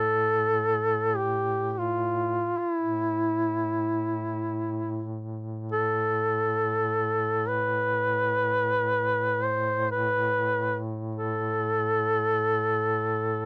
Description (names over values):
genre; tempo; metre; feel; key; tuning
caucasian folk, Caucasian lament; free time; none; none; unclear; A4 = 440 Hz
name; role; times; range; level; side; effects
warm duduk; melody; 0.0-13.5 s; E4 to C5; -27 LUFS; equal; none
warm duduk; drone; 0.0-13.5 s; A2; -35 LUFS; equal; none
room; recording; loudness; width
light reverb; dry, close 1970s-style studio recording; -27 LUFS; mono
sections
0.0-13.5 A section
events
none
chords
none